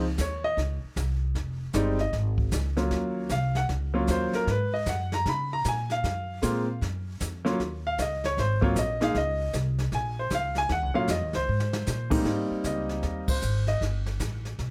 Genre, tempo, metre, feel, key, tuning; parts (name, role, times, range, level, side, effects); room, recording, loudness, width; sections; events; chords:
jazz piano trio; 154 BPM; 4/4; swing 64% on 8ths; Db major; A4 = 440 Hz
clear baby grand piano; melody; 0.0-13.8 s; Ab2 to Cb6; -30 LUFS; equal
upright bass; bass; 0.0-14.7 s; F1 to Db3; -32 LUFS; equal
jazz brush drum kit; drums; 0.2-14.7 s; brushed snare drum, crash cymbal, hi-hat, kick drum, ride cymbal, snare drum; -35 LUFS; equal
light reverb; -28 LUFS; mono
0.0-12.3 A section; 12.3-14.7 B section
drum fill 11.5-11.9; band accent 13.2
0.0 Dbmaj7sus2; 1.4 Fm9; 2.1 Absus4; 2.9 Ebm7; 4.5 Gbsus2; 5.3 Bbm7; 6.0 Gbmaj7; 7.6 Dbsus2; 8.4 Ab69; 9.1 Dbsus2; 9.9 Bbm; 10.7 Ebm9; 11.5 Abadd9; 12.3 Abmaj7; 13.8 G